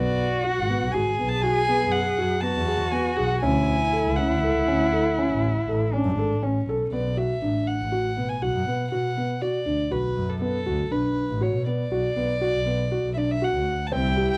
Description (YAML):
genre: contemporary instrumental, chamber music in an uneven meter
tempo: 120 BPM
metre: 7/4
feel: straight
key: B dorian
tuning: A4 = 440 Hz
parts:
  - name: warm violin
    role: melody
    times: 0.0-14.4 s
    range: A4 to A5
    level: -31 LUFS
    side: equal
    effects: none
  - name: warm cello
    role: second line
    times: 0.0-6.9, 13.9-14.4 s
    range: C#4 to G#4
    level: -29 LUFS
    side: equal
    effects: none
  - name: felt-muted upright piano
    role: arpeggios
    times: 0.0-14.3 s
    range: B3 to A4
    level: -29 LUFS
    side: equal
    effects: none
  - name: dark double bass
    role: bass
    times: 0.0-14.4 s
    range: G#1 to B2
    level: -30 LUFS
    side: equal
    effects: none
room: light reverb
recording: worn, warbling old tape, cassette tape, warbly pitch drift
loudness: -24 LUFS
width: mono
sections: 0.0-6.9 A section; 6.9-14.4 B section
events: none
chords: 0.0 B5; 3.4 Dmaj7; 6.9 Bm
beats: 0.44 0.94 1.44 1.94 2.44 2.94 | 3.44 3.94 4.43 4.93 5.43 5.93 6.43 | 6.93 7.42 7.92 8.42 8.92 9.42 9.92 | 10.42 10.92 11.42 11.92 12.42 12.92 13.42 | 13.92